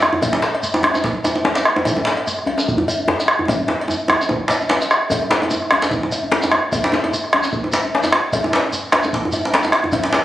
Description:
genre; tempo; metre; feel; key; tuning
west african traditional, West African drum ensemble; 148 BPM; 4/4; swing 55% on 16ths; none; none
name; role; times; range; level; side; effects
bombo; percussion; 0.0-10.2 s; none; -19 LUFS; equal; none
djembe; percussion; 0.0-10.2 s; none; -23 LUFS; left 3 dB; none
djembe; percussion; 0.0-10.2 s; none; -20 LUFS; right 1 dB; none
cowbell; percussion; 0.2-10.0 s; none; -24 LUFS; equal; none
shekere; percussion; 0.2-10.2 s; none; -28 LUFS; equal; none
room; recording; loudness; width
moderate plate reverb, RT60 2.9 s; recorded on a phone in the room, studio reverb, compression; -16 LUFS; side -14 dB against mid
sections
0.0-5.1 A section; 5.1-10.2 B section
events
drum fill 3.5-5.1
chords
none

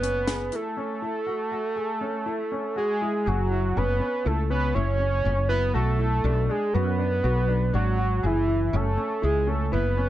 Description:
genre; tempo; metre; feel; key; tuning
progressive instrumental, band music in an uneven meter; 121 BPM; 5/4; straight; F# minor; A4 = 441 Hz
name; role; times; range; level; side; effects
fat analog lead; melody; 0.0-10.1 s; E4 to C#5; -26 LUFS; right 2 dB; none
warm baby grand piano; arpeggios; 0.0-10.1 s; C#4 to G#4; -33 LUFS; left 5 dB; tape echo
woody fretless electric bass; bass; 0.0-10.1 s; F#1 to F#2; -24 LUFS; equal; ensemble chorus
tight funk drum kit; drums; 0.0-0.6 s; hi-hat, snare drum; -32 LUFS; left 2 dB; none
room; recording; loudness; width
light reverb; nothing above 11.0 kHz; -23 LUFS; side -13 dB against mid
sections
0.0-3.3 A section; 3.3-10.1 B section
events
none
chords
0.0 F#sus2; 0.8 F#m7; 3.3 F#5; 5.7 Bm7; 8.2 F#m9

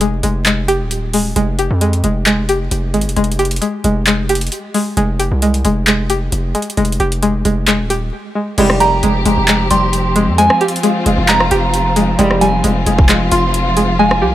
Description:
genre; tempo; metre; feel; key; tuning
hip hop, trap; 133 BPM; 4/4; half-time; F minor; A4 = 440 Hz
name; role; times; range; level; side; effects
string-like resonator pluck; arpeggios; 0.0-14.3 s; G3 to G4; -16 LUFS; left 1 dB; chorus, low-pass filter, digital delay
distorted 808-style bass; bass; 0.0-14.3 s; Eb1 to F2; -17 LUFS; equal; distortion
trap drum kit; drums; 0.0-14.2 s; crash cymbal, handclaps, hi-hat, kick drum, rim click; -17 LUFS; equal; none
warm studio string section; sustained chords; 8.6-14.3 s; F3 to G4; -19 LUFS; left 2 dB; none
mellow brass ensemble; stabs; 8.6-8.9, 12.2-12.5 s; C2 to G3; -20 LUFS; equal; digital delay
soft synth bell; second line; 8.8-14.3 s; Ab5 to C6; -17 LUFS; right 4 dB; chorus, digital delay
room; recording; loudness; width
light reverb, digital ambience; vinyl crackle; -12 LUFS; side -13 dB against mid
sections
0.0-8.6 A section; 8.6-14.3 B section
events
break 8.1-8.6; hi-hats muted 14.0-14.3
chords
0.0 Fmadd9

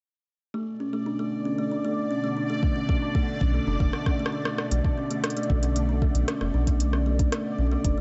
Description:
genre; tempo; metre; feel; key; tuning
IDM; 115 BPM; 4/4; straight; B minor; A4 = 441 Hz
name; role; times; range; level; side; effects
soft string machine; sustained chords; 0.9-8.0 s; B2 to D5; -35 LUFS; equal; phaser, ensemble chorus
kalimba; arpeggios; 0.5-8.0 s; A3 to D4; -31 LUFS; equal; low-pass filter, tape echo
bubbling stepped-filter texture; texture; 0.9-8.0 s; D5; -39 LUFS; equal; chorus, built-in reverb
electronic kick drum; drums; 2.6-8.0 s; none; -27 LUFS; equal; none
rubbery square bass; bass; 3.4-8.0 s; F#1 to B1; -27 LUFS; equal; none
organic electronic drum kit; drums; 3.9-8.0 s; hi-hat, rim click; -34 LUFS; equal; none
room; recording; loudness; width
light reverb; nothing above 7.9 kHz; -26 LUFS; mono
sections
0.5-4.7 A section; 4.7-8.0 B section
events
drum fill 3.9-4.7; break 4.2-4.7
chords
0.5 Bm9; 4.5 Bm7; 4.7 Bm9

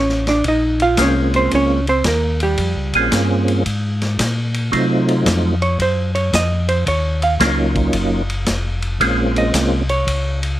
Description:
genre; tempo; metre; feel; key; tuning
soul jazz organ trio; 112 BPM; 4/4; swing 67% on 8ths; unclear; A4 = 440 Hz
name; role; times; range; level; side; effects
hollow-body jazz guitar; accompaniment; 0.0-10.4 s; G3 to F5; -18 LUFS; right 2 dB; none
mellow tonewheel organ; bass; 0.0-10.6 s; F1 to C3; -20 LUFS; left 1 dB; slow rotary speaker
vintage drum kit; drums; 0.1-10.5 s; hi-hat, kick drum, ride cymbal, snare drum; -23 LUFS; left 1 dB; none
percussive tonewheel organ; melody; 1.0-9.8 s; Gb3 to Ab4; -17 LUFS; right 1 dB; slow rotary speaker, chorus vibrato
room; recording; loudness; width
little or no reverb; close, detailed microphones; -15 LUFS; side -13 dB against mid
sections
0.0-10.6 A section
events
hollow-body jazz guitar solo 0.0-10.6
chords
0.5 Bbm9; 4.7 F7b9; 6.9 Ebm9; 9.0 Bbm9

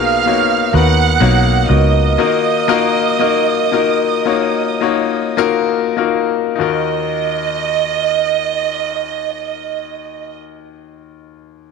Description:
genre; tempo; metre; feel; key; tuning
pop; 49-64 BPM; 4/4; straight; Eb minor; A4 = 440 Hz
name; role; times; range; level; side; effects
warm studio violin section; melody; 0.0-10.4 s; D#5 to F#6; -17 LUFS; right 12 dB; none
clear concert grand piano; accompaniment; 0.0-11.7 s; Eb2 to Db5; -16 LUFS; left 11 dB; none
vintage muted fingered electric bass; bass; 0.0-2.2 s; B1 to D#2; -14 LUFS; right 2 dB; none
room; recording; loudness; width
moderate plate reverb, RT60 3.5 s; 1960s-style stereo with parts hard left and right; -13 LUFS; side -5 dB against mid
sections
0.0-6.6 A section; 6.6-11.5 B section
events
slowing down 0.0-6.6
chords
0.0 Bmaj7; 2.2 Ebmadd9

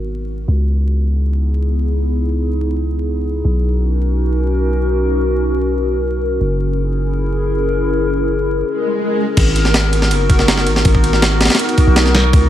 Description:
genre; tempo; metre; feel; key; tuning
drum and bass, jungle; 162 BPM; 4/4; straight; G# minor; A4 = 442 Hz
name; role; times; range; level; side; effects
warbly tape-like pad; sustained chords; 0.0-12.5 s; B3 to A#4; -19 LUFS; left 1 dB; chorus, built-in reverb
long sustained 808-style bass; bass; 0.0-12.5 s; F#1 to C#2; -16 LUFS; equal; none
swell; sound effects; 8.7-9.4 s; none; -22 LUFS; right 1 dB; none
breakbeat sampler-style drum kit; drums; 9.4-12.4 s; crash cymbal, kick drum, ride cymbal, snare drum; -14 LUFS; equal; none
room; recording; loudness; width
little or no reverb; vinyl crackle; -14 LUFS; side -12 dB against mid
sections
0.0-9.4 A section; 9.4-12.5 B section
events
filter sweep on ambient pad 0.0-9.4; swell 8.7-9.4; drop 9.4-12.5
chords
0.5 C#m7; 3.4 Bmaj7; 6.4 F#7; 9.4 G#m7

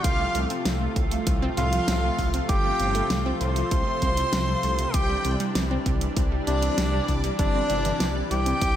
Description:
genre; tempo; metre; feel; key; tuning
synthwave; 98 BPM; 4/4; straight; unclear; A4 = 441 Hz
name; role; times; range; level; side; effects
breathy tenor saxophone; melody; 0.0-8.8 s; D4 to C5; -28 LUFS; equal; ping-pong delay
string machine, violins; second line; 0.0-8.8 s; D5 to C6; -35 LUFS; equal; ensemble chorus, ping-pong delay
lush unison pad; sustained chords; 0.0-8.8 s; C3 to F4; -30 LUFS; left 1 dB; chorus
wide unison pluck; arpeggios; 0.0-8.7 s; A2 to C4; -32 LUFS; right 2 dB; ping-pong delay
dark detuned saw bass; bass; 0.0-8.7 s; G1 to C2; -27 LUFS; equal; sidechain pumping
electronic kick drum; drums; 0.0-8.7 s; none; -26 LUFS; equal; studio reverb
pop drum kit; drums; 0.0-8.7 s; hi-hat, snare drum; -30 LUFS; equal; studio reverb
room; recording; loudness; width
light reverb, digital ambience; none; -22 LUFS; side -11 dB against mid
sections
0.0-8.8 A section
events
none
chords
0.0 F/C; 4.9 Cadd9

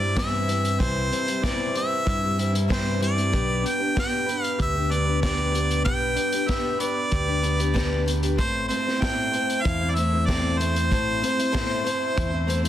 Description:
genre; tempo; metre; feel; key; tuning
folk rock and heartland rock; 95 BPM; 4/4; straight; G major; A4 = 439 Hz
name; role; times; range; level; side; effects
clear harmonica; melody; 0.0-12.7 s; C5 to G5; -26 LUFS; right 1 dB; none
picked steel-string acoustic guitar; accompaniment; 0.0-12.7 s; A2 to C5; -29 LUFS; left 5 dB; none
electric guitar through a small old amp; riff; 0.0-12.7 s; A2 to C5; -30 LUFS; right 2 dB; none
fingered electric bass; bass; 0.0-12.7 s; A1 to G2; -26 LUFS; equal; none
vintage drum kit; drums; 0.2-12.7 s; hi-hat, kick drum, snare drum; -29 LUFS; equal; none
room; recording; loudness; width
light reverb, small room ambience; dense, heavily limited modern master; -21 LUFS; side -11 dB against mid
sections
0.0-12.7 A section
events
none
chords
0.0 C; 3.3 G/B; 8.4 Am

